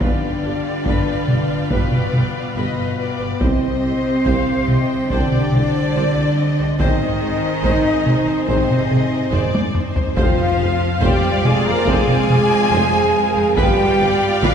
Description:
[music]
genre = cinematic, epic orchestral film score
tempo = 71 BPM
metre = 4/4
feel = straight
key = F dorian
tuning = A4 = 441 Hz
[part]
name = warm studio violin section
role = melody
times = 0.0-14.5 s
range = G4 to F5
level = -29 LUFS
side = left 4 dB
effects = none
[part]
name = silver concert flute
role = second line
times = 0.0-14.5 s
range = B4 to Bb5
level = -26 LUFS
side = left 1 dB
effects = none
[part]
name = warm symphonic violin section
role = second line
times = 0.0-14.5 s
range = B4 to Bb5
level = -27 LUFS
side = left 3 dB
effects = none
[part]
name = rich symphonic viola section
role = accompaniment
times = 0.0-14.5 s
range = Eb4 to F5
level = -28 LUFS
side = right 2 dB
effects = none
[part]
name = rich symphonic string section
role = sustained chords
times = 0.0-14.5 s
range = B3 to Ab5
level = -29 LUFS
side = right 1 dB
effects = none
[part]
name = warm French horn section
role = sustained chords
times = 0.0-14.5 s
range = B3 to Bb4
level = -22 LUFS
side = left 1 dB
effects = none
[part]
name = warm trombone section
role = sustained chords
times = 0.0-13.9 s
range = D3 to C4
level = -31 LUFS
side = right 4 dB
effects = none
[part]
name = rich symphonic cello section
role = bass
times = 0.0-14.5 s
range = B2 to Bb3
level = -24 LUFS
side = right 3 dB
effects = none
[part]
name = rich symphonic double bass section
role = bass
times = 0.0-14.5 s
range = F1 to C2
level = -26 LUFS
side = right 1 dB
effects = none
[part]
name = warm tuba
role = bass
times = 0.0-14.5 s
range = F1 to C2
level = -27 LUFS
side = right 2 dB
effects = none
[part]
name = solo taiko drums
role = drums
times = 0.0-14.5 s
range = none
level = -20 LUFS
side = equal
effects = none
[part]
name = timpani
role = percussion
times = 3.4-4.6, 10.2-11.4 s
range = F2 to C3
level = -27 LUFS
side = left 2 dB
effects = none
[sound]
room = wet scoring stage reverb, RT60 1.5 s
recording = heard from further back in the room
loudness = -15 LUFS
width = side -7 dB against mid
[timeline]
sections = 0.0-14.5 A section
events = drum fill 9.3-10.2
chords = 0.0 G7; 3.4 Cmadd9; 6.8 Ab; 10.2 Fm; 13.6 G7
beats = | 0.01 0.86 1.71 2.57 | 3.42 4.27 5.11 5.96 | 6.80 7.64 8.49 9.34 | 10.19 11.03 11.88 12.73 | 13.58 14.44

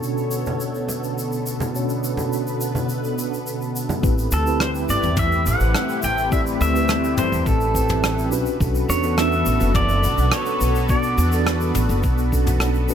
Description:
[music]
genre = sunset chillout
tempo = 105 BPM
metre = 4/4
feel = straight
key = A dorian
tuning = A4 = 440 Hz
[part]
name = mellow tine electric piano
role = accompaniment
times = 0.0-12.9 s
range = B2 to D5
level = -25 LUFS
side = moving between left 5 dB and right 5 dB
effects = medium stereo tremolo, auto-pan, ping-pong delay
[part]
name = lush unison pad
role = sustained chords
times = 0.0-12.9 s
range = B2 to C#5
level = -26 LUFS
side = equal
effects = chorus, phaser
[part]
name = soft brush drum kit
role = drums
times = 0.0-12.9 s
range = rim click, shaker, toms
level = -27 LUFS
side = equal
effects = none
[part]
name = congas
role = percussion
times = 0.5-4.0 s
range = none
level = -30 LUFS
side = right 3 dB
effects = none
[part]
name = upright bass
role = bass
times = 4.0-12.9 s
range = F#1 to E2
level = -21 LUFS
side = equal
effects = none
[part]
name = electronic kick drum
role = drums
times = 4.0-12.4 s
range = none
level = -22 LUFS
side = equal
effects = none
[part]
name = pedal steel guitar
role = melody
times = 4.3-11.7 s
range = A4 to G5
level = -24 LUFS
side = equal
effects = ping-pong delay
[sound]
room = light reverb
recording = none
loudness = -18 LUFS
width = side -8 dB against mid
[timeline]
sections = 0.0-4.0 A section; 4.0-12.9 B section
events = none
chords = 0.0 Bm9; 4.0 Am9; 8.3 Bm9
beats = 0.04 0.61 1.18 | 1.75 2.32 2.89 3.46 | 4.04 4.61 5.18 5.75 | 6.32 6.89 7.46 8.04 | 8.61 9.18 9.75 10.32 | 10.89 11.46 12.04 12.61

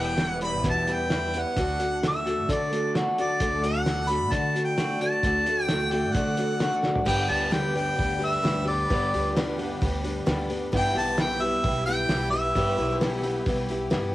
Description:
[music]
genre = folk rock and heartland rock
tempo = 131 BPM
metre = 4/4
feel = straight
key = G major from 7.1 s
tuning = A4 = 440 Hz
[part]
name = clear harmonica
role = melody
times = 0.0-13.0 s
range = D5 to B5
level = -27 LUFS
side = equal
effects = cassette tape
[part]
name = picked steel-string acoustic guitar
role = accompaniment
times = 0.0-14.1 s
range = E2 to G4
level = -30 LUFS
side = left 2 dB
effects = cassette tape
[part]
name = rich symphonic string section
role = sustained chords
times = 0.0-14.1 s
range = F#3 to D5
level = -38 LUFS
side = equal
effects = none
[part]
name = electric guitar through a small old amp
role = riff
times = 0.0-14.1 s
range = E2 to G4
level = -31 LUFS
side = right 1 dB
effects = phaser, cassette tape
[part]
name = upright bass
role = bass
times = 0.0-14.1 s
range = E1 to D3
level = -33 LUFS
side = equal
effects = none
[part]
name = cloth-damped thuddy drum kit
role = drums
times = 0.2-14.0 s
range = crash cymbal, hi-hat, kick drum, snare drum, toms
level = -30 LUFS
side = equal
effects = cassette tape
[sound]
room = light reverb, studio ambience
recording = home recording on cassette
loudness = -23 LUFS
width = side -16 dB against mid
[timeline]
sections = 0.0-7.1 A section; 7.1-14.1 B section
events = drum fill 6.9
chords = 0.0 Em; 1.6 D; 7.1 G; 10.7 Em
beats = 0.19 0.65 1.11 | 1.57 2.03 2.49 2.95 | 3.41 3.87 4.33 4.79 | 5.25 5.71 6.16 6.62 | 7.08 7.54 7.99 8.45 | 8.91 9.36 9.82 10.28 | 10.73 11.19 11.64 12.10 | 12.56 13.01 13.47 13.92

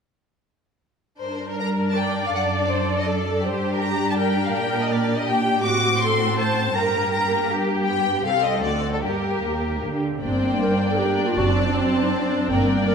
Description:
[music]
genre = classical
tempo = 160 BPM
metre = 3/4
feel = rubato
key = G minor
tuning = A4 = 439 Hz
[part]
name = warm symphonic violin section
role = melody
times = 1.2-12.9 s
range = A4 to D6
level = -25 LUFS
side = left 3 dB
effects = none
[part]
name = rich symphonic violin section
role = second line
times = 1.2-12.9 s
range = Bb3 to A5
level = -28 LUFS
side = left 2 dB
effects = none
[part]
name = warm symphonic cello section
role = bass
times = 1.2-12.9 s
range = C2 to D3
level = -25 LUFS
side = right 2 dB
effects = none
[part]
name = rich symphonic viola section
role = accompaniment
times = 1.6-12.9 s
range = Bb3 to D5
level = -25 LUFS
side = right 1 dB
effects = none
[part]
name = warm clarinet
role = second line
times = 10.2-12.9 s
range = Bb3 to Bb4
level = -23 LUFS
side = left 1 dB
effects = none
[part]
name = warm symphonic double bass section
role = bass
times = 10.2-12.9 s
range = F#1 to G1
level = -26 LUFS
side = right 2 dB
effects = none
[sound]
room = wet scoring stage reverb, RT60 1.7 s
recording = minimal, uncompressed stereo recording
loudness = -19 LUFS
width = side -6 dB against mid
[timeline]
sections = 1.2-10.2 A section; 10.2-12.9 A section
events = none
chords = 1.2 Gm; 2.3 D/F#; 3.4 Gm; 4.5 Gm/Bb; 5.6 D7/A; 6.8 Gm; 7.9 G; 8.3 Cm; 8.6 D7; 9.0 Gm; 11.4 D7/F#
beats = | 1.21 1.59 1.96 | 2.33 2.70 3.07 | 3.43 3.80 4.17 | 4.53 4.89 5.26 | 5.64 6.01 6.38 | 6.75 7.13 7.50 | 7.88 8.26 8.64 | 9.04 9.44 9.84 | 10.24 10.63 11.00 | 11.38 11.76 12.13 | 12.52 12.89

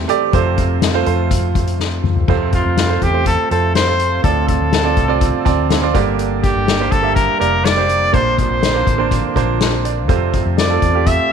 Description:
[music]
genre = piano-driven pop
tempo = 123 BPM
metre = 4/4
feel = straight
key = unclear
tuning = A4 = 441 Hz
[part]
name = bright grand piano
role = accompaniment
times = 0.0-11.3 s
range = G2 to A5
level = -19 LUFS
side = right 10 dB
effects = none
[part]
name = chorused pulse-width pad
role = sustained chords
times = 0.0-11.3 s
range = D3 to G4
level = -26 LUFS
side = equal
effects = none
[part]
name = vintage muted fingered electric bass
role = bass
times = 0.0-11.2 s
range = F1 to F2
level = -19 LUFS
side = left 1 dB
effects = none
[part]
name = soft-mallet drum kit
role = drums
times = 0.1-11.2 s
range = crash cymbal, hi-hat, kick drum, snare drum, toms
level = -18 LUFS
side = left 4 dB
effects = none
[part]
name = clear trumpet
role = melody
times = 2.5-11.3 s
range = F4 to E5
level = -18 LUFS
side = left 1 dB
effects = none
[sound]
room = light reverb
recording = 1960s-style stereo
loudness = -13 LUFS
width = side -7 dB against mid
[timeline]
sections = 0.0-2.3 A section; 2.3-11.3 B section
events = drum fill 1.8-2.3; grand piano fill 5.2-6.2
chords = 0.3 F; 4.2 Dm7; 5.9 Gm; 8.1 Bbadd9; 10.1 F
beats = | 0.34 0.82 1.31 1.80 | 2.29 2.77 3.26 3.75 | 4.24 4.73 5.21 5.70 | 6.19 6.68 7.17 7.65 | 8.14 8.63 9.12 9.61 | 10.09 10.58 11.07

